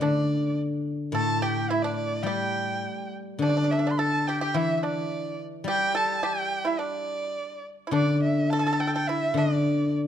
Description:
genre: chinese traditional, Chinese chamber ensemble.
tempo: 106 BPM.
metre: 2/4.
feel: rubato.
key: unclear.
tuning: A4 = 440 Hz.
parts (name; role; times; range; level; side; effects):
warm erhu; melody; 0.0-9.9 s; D5 to C6; -29 LUFS; right 2 dB; none.
pipa; second line; 0.0-9.9 s; D4 to A4; -31 LUFS; right 3 dB; none.
guzheng; accompaniment; 0.0-10.1 s; A2 to G3; -26 LUFS; left 2 dB; none.
room: moderate recital hall reverb, RT60 1.4 s.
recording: dark, warm production.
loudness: -24 LUFS.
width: side -10 dB against mid.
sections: 0.0-3.4 A section; 3.4-10.1 B section.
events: none.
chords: none.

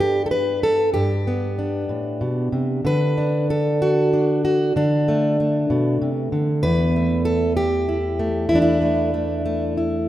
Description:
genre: folk, solo fingerstyle acoustic guitar.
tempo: 64 BPM (dotted quarters).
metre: 6/8.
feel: straight.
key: E minor.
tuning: A4 = 443 Hz.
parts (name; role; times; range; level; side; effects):
fingerpicked plugged-in steel-string acoustic guitar; solo; 0.0-10.1 s; E2 to B4; -18 LUFS; equal; none.
room: wet lush hall reverb, RT60 2.6 s.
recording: rough home demo mix.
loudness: -18 LUFS.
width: side -13 dB against mid.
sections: 0.0-10.1 A section.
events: none.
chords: 0.0 G; 2.8 D; 6.6 Emadd11.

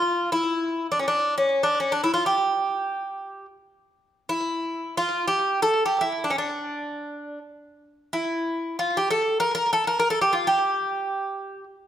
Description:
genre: Turkish makam ensemble.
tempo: free time.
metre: none.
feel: none.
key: G makam nikriz.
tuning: A4 = 440 Hz.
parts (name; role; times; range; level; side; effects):
Greek bouzouki; solo; 0.0-11.6 s; C#4 to Bb4; -22 LUFS; equal; slapback echo.
room: moderate recital hall reverb, RT60 1.8 s.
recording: none.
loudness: -22 LUFS.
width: side -10 dB against mid.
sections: 0.0-11.9 A section.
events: none.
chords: none.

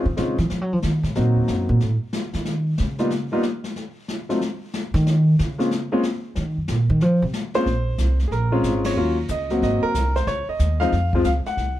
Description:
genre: jazz piano trio.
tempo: 184 BPM.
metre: 4/4.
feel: swing 64% on 8ths.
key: unclear.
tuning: A4 = 440 Hz.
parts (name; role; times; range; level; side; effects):
clear baby grand piano; melody; 0.0-11.8 s; F3 to Gb5; -22 LUFS; left 1 dB; plate reverb.
upright bass; bass; 0.1-11.8 s; Ab1 to Gb3; -20 LUFS; right 1 dB; none.
jazz brush drum kit; drums; 0.2-11.8 s; brushed snare drum, hi-hat, kick drum, ride cymbal, snare drum; -30 LUFS; left 2 dB; none.
room: moderate studio reverb, RT60 0.6 s.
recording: dark, warm production.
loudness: -19 LUFS.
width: side -13 dB against mid.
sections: 0.0-7.7 A section; 7.7-11.8 B section.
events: upright bass solo 0.0-7.7; band accent 8.8.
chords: 0.0 Dbmaj7; 1.1 Cm7b5; 1.8 N.C.; 6.4 Gb6; 7.0 F5; 7.7 Bbm9; 9.0 Ebm7; 9.6 Ab9; 10.3 Db.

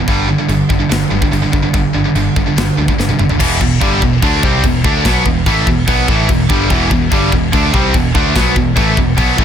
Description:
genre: heavy metal.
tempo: 145 BPM.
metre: 4/4.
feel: straight.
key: E minor.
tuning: A4 = 438 Hz.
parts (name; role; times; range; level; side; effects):
high-gain distorted guitar; riff; 0.0-9.4 s; E2 to D4; -19 LUFS; left 11 dB; distortion.
tight distorted guitar; riff; 0.0-9.4 s; E2 to D4; -16 LUFS; right 10 dB; distortion.
modern bright picked electric bass; bass; 0.1-9.4 s; E1 to D2; -18 LUFS; left 1 dB; none.
tight metal drum kit; drums; 0.1-9.4 s; china cymbal, crash cymbal, kick drum, snare drum, toms; -16 LUFS; left 1 dB; none.
distorted electric guitar; riff; 3.4-9.4 s; E2 to D4; -19 LUFS; left 2 dB; overdrive.
room: little or no reverb.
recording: dense, heavily limited modern master.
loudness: -11 LUFS.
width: side -8 dB against mid.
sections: 0.0-3.4 A section; 3.4-9.4 B section.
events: drum fill 3.0-3.4; half time 3.4-9.4.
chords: 0.1 G5; 3.4 Em.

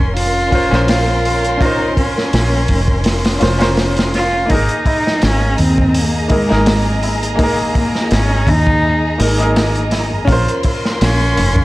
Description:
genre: trip hop.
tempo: 83 BPM.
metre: 4/4.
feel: swing 55% on 16ths.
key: Bb minor.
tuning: A4 = 443 Hz.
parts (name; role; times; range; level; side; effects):
dark cello; melody; 0.0-11.6 s; Ab3 to F4; -19 LUFS; equal; tape echo.
bright upright piano; accompaniment; 0.0-11.6 s; Bb3 to C5; -20 LUFS; equal; harmonic tremolo, vintage 12-bit sampler grit.
dark studio violin section; sustained chords; 0.0-11.6 s; Bb3 to C6; -22 LUFS; equal; vintage 12-bit sampler grit.
fingered electric bass; bass; 0.0-11.6 s; F1 to Eb2; -17 LUFS; equal; none.
crunchy breakbeat drum kit; drums; 0.0-11.6 s; hi-hat, kick drum, snare drum; -18 LUFS; equal; none.
tabla; percussion; 4.5-11.6 s; none; -27 LUFS; equal; none.
room: small room reverb.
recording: dry, gritty hardware recording, vinyl crackle.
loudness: -12 LUFS.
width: side -18 dB against mid.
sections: 0.0-11.6 A section.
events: none.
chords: 0.0 Bbmadd9; 4.5 Absus2; 10.3 Bbmadd9.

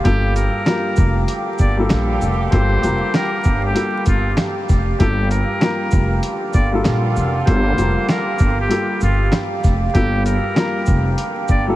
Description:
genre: hip hop, boom-bap hip-hop.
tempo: 97 BPM.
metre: 4/4.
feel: swing 61% on 16ths.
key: G minor.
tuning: A4 = 440 Hz.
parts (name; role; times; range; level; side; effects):
trumpet with metal mute; melody; 0.0-11.7 s; F4 to D5; -24 LUFS; equal; high-pass filter, low-pass filter, analog delay.
dark upright piano; accompaniment; 0.0-11.8 s; G2 to Bb4; -23 LUFS; left 2 dB; cassette tape, high-pass filter, low-pass filter.
dark analog pad; sustained chords; 0.0-11.8 s; G4 to D6; -26 LUFS; right 2 dB; chorus, high-pass filter, low-pass filter.
dusty soul sampler-style drum kit; drums; 0.0-11.7 s; hi-hat, kick drum, shaker, snare drum; -20 LUFS; equal; none.
upright bass; bass; 0.1-11.8 s; F1 to Bb1; -19 LUFS; equal; none.
clear horn section; stabs; 1.3-11.8 s; D3 to G4; -30 LUFS; right 2 dB; high-pass filter, low-pass filter, analog delay.
room: light reverb, studio ambience.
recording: vinyl crackle.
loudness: -15 LUFS.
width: side -16 dB against mid.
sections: 0.0-11.8 A section.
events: none.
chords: 0.0 Gm7.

